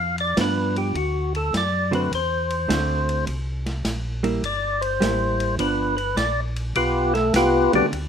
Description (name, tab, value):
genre	soul jazz organ trio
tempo	103 BPM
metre	4/4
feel	swing 66% on 8ths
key	G mixolydian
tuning	A4 = 440 Hz
part	percussive tonewheel organ	melody	0.0-7.9 s	G3 to F5	-22 LUFS	left 1 dB	slow rotary speaker
part	mellow tonewheel organ	bass	0.0-8.1 s	G1 to G2	-27 LUFS	equal	slow rotary speaker
part	vintage drum kit	drums	0.2-8.1 s	hi-hat, kick drum, ride cymbal, snare drum	-30 LUFS	equal	none
part	hollow-body jazz guitar	accompaniment	0.4-7.9 s	D3 to F#4	-25 LUFS	right 3 dB	none
room	moderate club reverb, RT60 0.8 s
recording	minimal, uncompressed stereo recording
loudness	-20 LUFS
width	side -8 dB against mid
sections	0.0-8.1 A section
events	tonewheel organ solo 0.0-8.1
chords	0.0 G7; 0.9 D7; 3.3 C7; 5.6 G7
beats	0.36 | 0.95 1.53 2.11 2.69 | 3.27 3.85 4.43 5.02 | 5.60 6.18 6.76 7.34 | 7.92